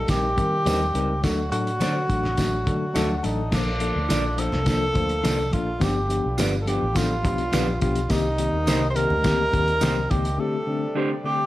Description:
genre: uptempo 1960s-style soul.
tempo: 105 BPM.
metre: 4/4.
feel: straight.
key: unclear.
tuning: A4 = 441 Hz.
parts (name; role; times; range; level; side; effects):
breathy tenor saxophone; melody; 0.0-11.5 s; D4 to C5; -26 LUFS; equal; none.
pedal harmonium; sustained chords; 0.0-11.5 s; C3 to F#4; -34 LUFS; right 1 dB; none.
vintage muted fingered electric bass; bass; 0.0-10.4 s; G1 to Eb3; -27 LUFS; equal; none.
mellow tine electric piano; accompaniment; 0.1-11.4 s; D3 to A5; -27 LUFS; left 3 dB; medium stereo tremolo.
cloth-damped thuddy drum kit; drums; 0.1-10.4 s; crash cymbal, hi-hat, kick drum, snare drum; -26 LUFS; equal; none.
congas; percussion; 0.1-10.1 s; none; -37 LUFS; right 1 dB; none.
tambourine; percussion; 0.1-9.9 s; none; -37 LUFS; right 3 dB; none.
electric guitar through a small old amp; stabs; 0.7-11.1 s; D4 to Eb5; -32 LUFS; right 5 dB; tape echo.
room: moderate studio reverb, RT60 0.6 s.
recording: none.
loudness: -20 LUFS.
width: side -16 dB against mid.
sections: 0.0-3.5 A section; 3.5-11.5 B section.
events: tine electric piano fill 2.7-3.5; break 10.4-11.5.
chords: 0.0 Eb6; 1.2 D; 3.5 Bbmaj7; 5.8 G7; 8.1 Cm7; 10.4 D7sus4.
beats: 0.09 0.67 | 1.24 1.81 2.38 2.96 | 3.53 4.10 4.67 5.25 | 5.82 6.39 6.96 7.53 | 8.11 8.68 9.25 9.82 | 10.39 10.96.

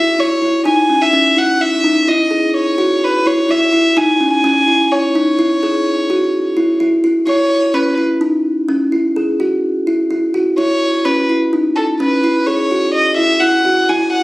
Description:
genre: progressive instrumental, progressive.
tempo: 127 BPM.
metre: 7/4.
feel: straight.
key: C# minor.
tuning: A4 = 441 Hz.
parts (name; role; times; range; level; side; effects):
rich violin; melody; 0.0-14.2 s; A4 to G#5; -15 LUFS; equal; none.
kalimba; arpeggios; 0.0-14.2 s; C#4 to G#4; -14 LUFS; equal; none.
room: moderate studio reverb, RT60 0.8 s.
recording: recorded on a phone in the room, studio reverb.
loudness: -12 LUFS.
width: side -19 dB against mid.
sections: 0.0-7.3 A section; 7.3-14.2 B section.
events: violin solo 7.3-14.2.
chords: 0.0 C#m.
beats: 0.18 | 0.65 1.12 1.60 2.07 2.55 3.02 3.49 | 3.97 4.44 4.91 5.38 5.86 6.33 6.80 | 7.27 7.75 8.22 8.69 9.16 9.63 10.11 | 10.58 11.05 11.52 11.99 12.47 12.94 13.41 | 13.88.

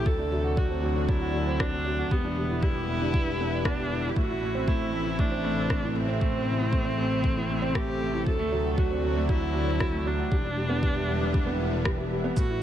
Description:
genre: piano and strings electronica.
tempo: 117 BPM.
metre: 4/4.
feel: straight.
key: A dorian.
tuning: A4 = 440 Hz.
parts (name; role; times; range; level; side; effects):
warm viola; melody; 0.0-12.6 s; B3 to A4; -31 LUFS; equal; ping-pong delay.
lush unison pad; sustained chords; 0.0-12.6 s; C3 to E4; -34 LUFS; equal; chorus, phaser, sidechain pumping.
warm upright piano; riff; 0.0-12.6 s; F#3 to D5; -31 LUFS; right 2 dB; ping-pong delay.
clear chamber double bass section; bass; 0.0-12.6 s; E1 to D2; -30 LUFS; left 1 dB; sidechain pumping.
electronic kick drum; drums; 0.1-12.5 s; none; -27 LUFS; equal; studio reverb.
electronic rim click and shaker; drums; 1.6-12.5 s; none; -35 LUFS; left 1 dB; studio reverb.
room: light reverb, small room ambience.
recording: none.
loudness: -24 LUFS.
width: side -11 dB against mid.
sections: 0.0-12.6 A section.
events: none.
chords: 0.1 D7; 2.1 Em7; 4.2 Am; 8.3 D7; 10.3 Em7.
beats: | 0.06 0.57 1.09 1.60 | 2.11 2.62 3.14 3.65 | 4.16 4.68 5.19 5.70 | 6.21 6.73 7.24 7.75 | 8.27 8.78 9.29 9.80 | 10.32 10.83 11.34 11.86 | 12.37.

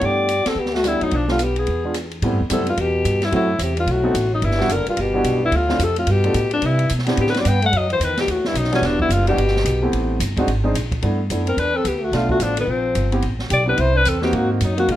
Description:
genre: jazz, small-group swing and bop.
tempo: 218 BPM.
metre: 4/4.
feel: swing 61% on 8ths.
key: G major.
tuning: A4 = 439 Hz.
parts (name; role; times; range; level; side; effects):
clear alto saxophone; melody; 0.0-15.0 s; Bb3 to G5; -20 LUFS; left 3 dB; plate reverb.
trombone with bucket mute; second line; 0.0-15.0 s; E2 to G4; -26 LUFS; right 2 dB; none.
warm grand piano; accompaniment; 0.0-15.0 s; F#3 to A4; -23 LUFS; right 1 dB; none.
upright bass; bass; 0.0-15.0 s; E1 to C3; -22 LUFS; right 1 dB; none.
open jazz drum kit; drums; 0.0-15.0 s; hi-hat, kick drum, ride cymbal, rim click, snare drum; -29 LUFS; equal; none.
room: light reverb.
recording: none.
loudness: -17 LUFS.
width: side -13 dB against mid.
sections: 0.0-2.2 A section; 2.2-11.0 B section; 11.0-15.0 A section.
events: none.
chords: 0.0 G6; 1.1 Bm7b5; 1.7 E7b9; 2.2 Am9; 3.3 F#m7b5; 3.9 B7b9; 4.4 Em9; 5.5 Dm7; 6.1 G9; 6.6 Cmaj7; 7.7 B; 8.8 Em7; 9.9 Am7; 10.5 Ab; 11.0 G6; 12.1 Bm7b5; 12.7 Bbsus2; 13.2 Am7; 14.3 Ab9.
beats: | 0.02 0.29 0.57 0.85 | 1.12 1.40 1.67 1.95 | 2.22 2.50 2.77 3.05 | 3.32 3.60 3.88 4.15 | 4.42 4.70 4.97 5.25 | 5.53 5.80 6.08 6.35 | 6.63 6.90 7.18 7.45 | 7.73 8.00 8.28 8.55 | 8.83 9.10 9.38 9.65 | 9.93 10.20 10.48 10.75 | 11.03 11.30 11.58 11.85 | 12.13 12.40 12.68 12.95 | 13.23 13.50 13.78 14.05 | 14.33 14.61 14.88.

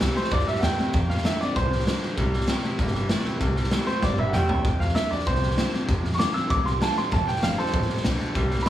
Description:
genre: rockabilly.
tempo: 194 BPM.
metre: 4/4.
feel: straight.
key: unclear.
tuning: A4 = 436 Hz.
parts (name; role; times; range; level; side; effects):
picked steel-string acoustic guitar; accompaniment; 0.0-8.7 s; F2 to F4; -31 LUFS; left 1 dB; plate reverb.
electric guitar through a small old amp; riff; 0.0-8.7 s; F2 to A3; -30 LUFS; right 1 dB; none.
upright bass; bass; 0.0-8.7 s; G1 to F2; -27 LUFS; equal; none.
raw garage drum kit; drums; 0.0-8.7 s; hi-hat, kick drum, snare drum, toms; -26 LUFS; equal; none.
bright upright piano; melody; 0.2-8.7 s; A4 to E6; -28 LUFS; right 1 dB; plate reverb.
room: light reverb.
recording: small room ambience.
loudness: -22 LUFS.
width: side -12 dB against mid.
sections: 0.0-8.7 A section.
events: drum fill 4.0-4.6.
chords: 0.0 C; 0.9 F; 2.2 C; 4.6 F.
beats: 0.01 0.32 0.63 | 0.94 1.24 1.55 1.86 | 2.17 2.48 2.79 3.10 | 3.41 3.72 4.03 4.33 | 4.64 4.95 5.26 5.57 | 5.88 6.19 6.50 6.81 | 7.12 7.43 7.74 8.04 | 8.35 8.66.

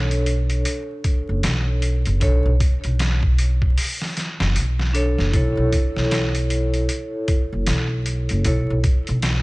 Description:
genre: trip hop.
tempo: 77 BPM.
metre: 4/4.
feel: swing 60% on 16ths.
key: B minor.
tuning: A4 = 441 Hz.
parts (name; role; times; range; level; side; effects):
vibraphone with soft mallets; accompaniment; 0.0-8.7 s; D4 to C#5; -26 LUFS; equal; tremolo, tape echo.
upright bass; bass; 0.0-9.4 s; F#1 to B1; -20 LUFS; equal; none.
trip hop sampler-style drum kit; drums; 0.1-9.4 s; hi-hat, kick drum, snare drum; -22 LUFS; equal; overdrive.
room: small room ambience.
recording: vinyl crackle, nothing above 10.9 kHz.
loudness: -18 LUFS.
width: side -23 dB against mid.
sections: 0.0-9.4 A section.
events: none.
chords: 0.0 Bm9; 5.3 A.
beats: 0.66 1.44 | 2.22 3.00 3.78 4.56 | 5.34 6.12 6.89 7.67 | 8.45 9.23.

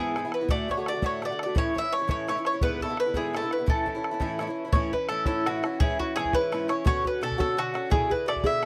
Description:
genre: celtic folk, Celtic jig.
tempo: 113 BPM (dotted quarters).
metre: 6/8.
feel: straight.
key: A major.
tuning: A4 = 440 Hz.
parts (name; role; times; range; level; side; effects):
bowl-back mandolin; melody; 0.0-8.7 s; F#4 to E5; -30 LUFS; equal; tape echo.
Irish bouzouki; accompaniment; 0.0-8.7 s; G#2 to G#4; -32 LUFS; equal; none.
bodhran; percussion; 0.2-8.7 s; none; -30 LUFS; equal; none.
room: light reverb.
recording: dry, close 1970s-style studio recording.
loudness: -27 LUFS.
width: mono.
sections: 0.0-4.7 A section; 4.7-8.7 B section.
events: none.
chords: 0.5 D; 1.6 A; 2.6 E7; 3.7 A; 5.8 C#m; 6.9 Bmadd9; 7.9 E7.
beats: | 0.49 1.02 | 1.55 2.08 | 2.61 3.14 | 3.67 4.20 | 4.73 5.26 | 5.79 6.32 | 6.85 7.38 | 7.91 8.44.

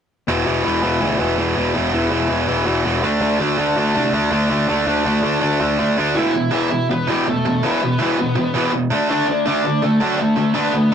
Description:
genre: punk.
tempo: 163 BPM.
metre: 4/4.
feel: straight.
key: unclear.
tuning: A4 = 441 Hz.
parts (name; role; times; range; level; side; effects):
crunchy overdriven guitar; riff; 0.3-10.9 s; E2 to D4; -21 LUFS; left 4 dB; none.
tight distorted guitar; riff; 0.3-10.9 s; E2 to D4; -19 LUFS; right 3 dB; distortion.
fuzz picked electric bass; bass; 0.3-6.2 s; E1 to D2; -23 LUFS; equal; overdrive.
high-gain lead guitar; melody; 6.2-10.9 s; F#3 to E5; -22 LUFS; equal; distortion.
room: moderate booth ambience, RT60 0.2 s.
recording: rough rehearsal-room recording, warm saturation.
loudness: -16 LUFS.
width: side -8 dB against mid.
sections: 0.3-6.2 A section; 6.2-10.9 B section.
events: none.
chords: 0.3 E5; 3.0 D5; 6.2 E5; 8.9 D5.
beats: | 0.28 0.64 1.01 1.38 | 1.75 2.11 2.48 2.85 | 3.22 3.58 3.95 4.32 | 4.69 5.06 5.42 5.79 | 6.16 6.53 6.90 7.26 | 7.63 8.00 8.36 8.73 | 9.10 9.46 9.83 10.19 | 10.56 10.92.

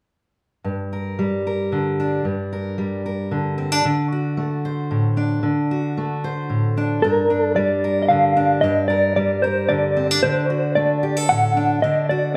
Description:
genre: folk.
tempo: 113 BPM.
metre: 3/4.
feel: straight.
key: G minor.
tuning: A4 = 440 Hz.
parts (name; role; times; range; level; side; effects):
fingerpicked steel-string acoustic guitar; accompaniment; 0.6-12.4 s; G2 to C5; -23 LUFS; equal; none.
mellow electric guitar; melody; 7.0-12.3 s; Bb4 to F#5; -21 LUFS; equal; tremolo.
room: moderate large studio reverb, RT60 0.9 s.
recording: band playing live in one room.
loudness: -20 LUFS.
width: mono.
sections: 0.6-7.0 A section; 7.0-12.4 B section.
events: none.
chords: 0.6 Gm; 3.8 D; 7.0 Gm; 10.2 D.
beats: | 0.65 1.18 1.71 | 2.24 2.77 3.30 | 3.83 4.37 4.90 | 5.43 5.96 6.49 | 7.03 7.56 8.09 | 8.62 9.16 9.69 | 10.22 10.76 11.29 | 11.82 12.36.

